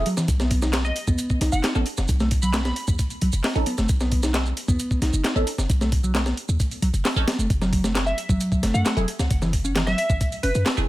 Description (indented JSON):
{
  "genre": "breakbeat, breaks",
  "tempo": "133 BPM",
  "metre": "4/4",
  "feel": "straight",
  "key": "unclear",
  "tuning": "A4 = 441 Hz",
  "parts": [
    { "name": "filtered dub chord stab", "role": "stabs", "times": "0.0-10.9 s", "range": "A3 to A4", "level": "-29 LUFS", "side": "right 2 dB", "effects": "phaser, wide subtle chorus, tape echo" },
    { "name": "warm 808-style bass", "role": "bass", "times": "0.0-10.9 s", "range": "E1 to F#2", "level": "-23 LUFS", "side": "equal", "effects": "none" },
    { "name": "picked electric bass", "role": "riff", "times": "0.1-10.5 s", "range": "E3 to D#4", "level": "-27 LUFS", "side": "equal", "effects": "tube saturation, vintage 12-bit sampler grit, tape echo" },
    { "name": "breakbeat sampler-style drum kit", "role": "drums", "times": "0.1-10.8 s", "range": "hi-hat, kick drum, snare drum", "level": "-25 LUFS", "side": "equal", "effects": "studio reverb" },
    { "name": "garage drum kit", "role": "drums", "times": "0.1-10.9 s", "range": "handclaps, hi-hat, shaker", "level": "-31 LUFS", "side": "right 1 dB", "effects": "studio reverb" },
    { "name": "glassy wavetable pluck", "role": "melody", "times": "0.8-3.3, 8.1-10.8 s", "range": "B4 to B5", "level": "-29 LUFS", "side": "equal", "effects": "chorus, AM radio sound, tape echo" }
  ],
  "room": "light reverb",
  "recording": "none",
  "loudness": "-20 LUFS",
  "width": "side -16 dB against mid",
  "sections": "0.0-10.9 A section",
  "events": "none",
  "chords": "0.3 B7; 7.5 F#m7"
}